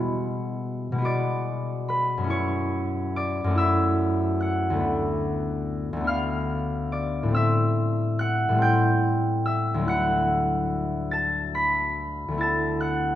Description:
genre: classical, solo harp piece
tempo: 48 BPM (dotted quarters)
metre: 6/8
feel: rubato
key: unclear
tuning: A4 = 442 Hz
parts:
  - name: concert harp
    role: solo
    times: 0.0-13.2 s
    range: D2 to B6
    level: -22 LUFS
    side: left 1 dB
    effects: none
room: wet concert hall reverb, RT60 2.1 s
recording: none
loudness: -22 LUFS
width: side -12 dB against mid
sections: 0.0-13.2 A section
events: none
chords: 0.0 Bm6; 2.3 F#m7; 4.8 Dm6; 7.3 Am7; 9.9 Dadd9

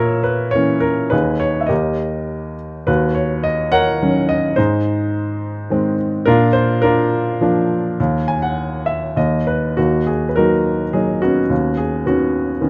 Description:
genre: classical, lyrical solo piano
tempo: 105 BPM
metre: 3/4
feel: rubato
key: unclear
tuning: A4 = 440 Hz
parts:
  - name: warm baby grand piano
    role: solo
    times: 0.0-12.7 s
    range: D#2 to G#5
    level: -18 LUFS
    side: equal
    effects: none
room: light reverb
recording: dark, warm production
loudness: -18 LUFS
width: mono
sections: 0.0-9.8 A section; 9.8-12.7 B section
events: grand piano fill 8.0-9.8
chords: 0.0 A#dim; 1.1 G#m/D#; 1.7 D#; 2.9 D#m7; 4.6 G#; 6.3 A#; 8.0 A#sus4/D#; 9.2 N.C.; 9.8 Ebm; 11.5 Badd9/D#

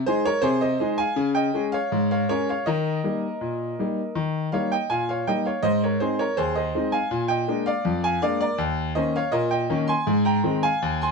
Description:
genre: ragtime piano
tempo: 81 BPM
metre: 2/4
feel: straight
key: Ab major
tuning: A4 = 441 Hz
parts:
  - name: bright grand piano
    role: solo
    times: 0.1-11.1 s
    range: Eb2 to C6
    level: -21 LUFS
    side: equal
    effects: none
room: light reverb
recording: dark, warm production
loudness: -21 LUFS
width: side -4 dB against mid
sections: 0.0-11.1 A section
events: none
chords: 0.0 Ab; 1.2 Db; 2.7 Eb; 5.6 Ab; 7.1 Bb7; 8.6 Eb5; 10.1 Ab

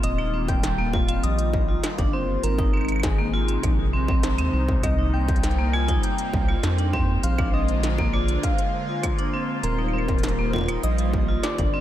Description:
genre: IDM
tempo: 100 BPM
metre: 4/4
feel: straight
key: unclear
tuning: A4 = 440 Hz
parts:
  - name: soft struck synth lead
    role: melody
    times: 0.0-11.8 s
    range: Ab4 to Ab5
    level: -31 LUFS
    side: left 1 dB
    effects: chorus, tape echo
  - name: phased analog pad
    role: sustained chords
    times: 0.0-11.8 s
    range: C3 to F4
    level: -29 LUFS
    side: left 1 dB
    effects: phaser, chorus
  - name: vibraphone with hard mallets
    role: arpeggios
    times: 0.0-11.8 s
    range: Bb3 to F4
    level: -29 LUFS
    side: right 1 dB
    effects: ping-pong delay
  - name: round analog bass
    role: bass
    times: 0.0-11.8 s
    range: Eb1 to F2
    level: -25 LUFS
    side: equal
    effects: none
  - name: industrial drum kit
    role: drums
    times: 0.0-11.7 s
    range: claves, hi-hat, snare drum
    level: -33 LUFS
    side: right 1 dB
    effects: none
  - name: electronic kick drum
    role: drums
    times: 0.5-11.7 s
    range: none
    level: -25 LUFS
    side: equal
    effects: distortion
  - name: flickering grainy texture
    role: texture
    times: 5.3-11.8 s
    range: C5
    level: -39 LUFS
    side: right 1 dB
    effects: built-in reverb, ensemble chorus
room: light reverb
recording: none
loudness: -20 LUFS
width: side -12 dB against mid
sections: 0.0-11.8 A section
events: none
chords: 0.0 Ebadd9; 2.4 Ab; 4.8 Cm7; 7.2 Bb7; 9.6 Ebadd9

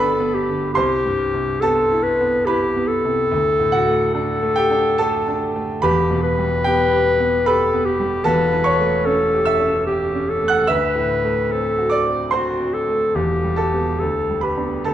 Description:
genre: classical, romantic duo for clarinet and grand piano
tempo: 72 BPM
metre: 3/4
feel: rubato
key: unclear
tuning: A4 = 439 Hz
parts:
  - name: warm clarinet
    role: melody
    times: 0.0-14.9 s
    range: F#4 to B4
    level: -19 LUFS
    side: left 2 dB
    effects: none
  - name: clear grand piano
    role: accompaniment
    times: 0.0-14.9 s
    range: E1 to F#6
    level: -20 LUFS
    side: right 2 dB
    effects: none
room: wet recital hall reverb, RT60 1.6 s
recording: dark, warm production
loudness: -16 LUFS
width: side -11 dB against mid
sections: 0.0-14.9 A section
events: none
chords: 0.0 G; 0.7 Cmaj7; 3.3 D; 5.8 Em; 8.2 A7/E; 10.7 D7; 13.2 Em; 14.0 G/D

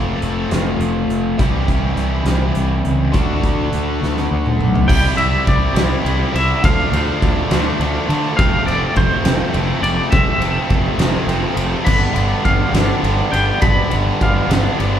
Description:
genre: indie rock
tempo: 69 BPM (dotted quarters)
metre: 6/8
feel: straight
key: unclear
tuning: A4 = 442 Hz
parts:
  - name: twangy electric guitar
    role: melody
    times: 0.0-1.1, 4.9-14.8 s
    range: C5 to B5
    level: -20 LUFS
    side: equal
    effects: tremolo
  - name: overdriven electric guitar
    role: riff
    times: 0.0-15.0 s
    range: F2 to G4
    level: -20 LUFS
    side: equal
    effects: none
  - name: fuzz fingered electric bass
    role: bass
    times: 0.0-15.0 s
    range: F1 to D3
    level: -20 LUFS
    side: equal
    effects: overdrive
  - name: big rock drum kit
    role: drums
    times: 0.2-14.9 s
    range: crash cymbal, hi-hat, kick drum, ride cymbal, snare drum, toms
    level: -19 LUFS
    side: equal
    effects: none
room: moderate large studio reverb, RT60 1.2 s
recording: band playing live in one room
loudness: -14 LUFS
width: side -9 dB against mid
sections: 0.0-4.9 A section; 4.9-15.0 B section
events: drum fill 4.0-4.9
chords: 0.0 F; 1.4 C; 3.1 D; 4.9 C; 6.6 Dm; 8.4 F; 11.9 G

